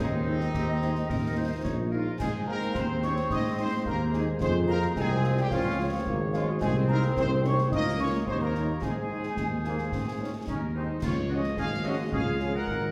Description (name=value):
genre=military-style march for wind band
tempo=109 BPM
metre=2/4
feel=straight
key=Ab major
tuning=A4 = 440 Hz
part: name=dark trumpet section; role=melody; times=0.0-12.9 s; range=Eb4 to Gb5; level=-39 LUFS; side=equal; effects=none
part: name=clear woodwind section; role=second line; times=0.0-12.9 s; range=Db4 to Db5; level=-42 LUFS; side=equal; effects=none
part: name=flute section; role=second line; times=0.0-12.9 s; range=Db4 to Eb6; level=-39 LUFS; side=equal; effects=none
part: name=warm euphonium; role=second line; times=0.0-10.4 s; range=Eb3 to Eb4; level=-37 LUFS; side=equal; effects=none
part: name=bright trombone section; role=sustained chords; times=0.0-12.9 s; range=F3 to Eb4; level=-40 LUFS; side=equal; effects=none
part: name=mellow tuba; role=bass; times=0.0-12.9 s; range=Ab1 to Ab2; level=-31 LUFS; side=equal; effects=none
part: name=mellow French horn section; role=accompaniment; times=0.3-12.5 s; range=F3 to F4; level=-41 LUFS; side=equal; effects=none
part: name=concert snare drum, concert bass drum and clash cymbals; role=drums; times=0.4-12.9 s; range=none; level=-36 LUFS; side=equal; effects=none
room=wet recital hall reverb, RT60 1.7 s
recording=heard from further back in the room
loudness=-28 LUFS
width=mono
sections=0.0-11.0 A section; 11.0-12.9 B section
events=none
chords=0.0 Ab/Eb; 1.1 Eb; 2.2 Ab; 4.4 Fm; 5.5 Db; 6.6 Ab/C; 7.7 Bbm7/Db; 8.3 Eb7; 8.8 Ab; 11.0 Db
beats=0.54 | 1.09 1.65 | 2.20 2.75 | 3.30 3.85 | 4.41 4.96 | 5.51 6.06 | 6.61 7.16 | 7.71 8.27 | 8.82 9.37 | 9.92 10.47 | 11.02 11.57 | 12.12 12.68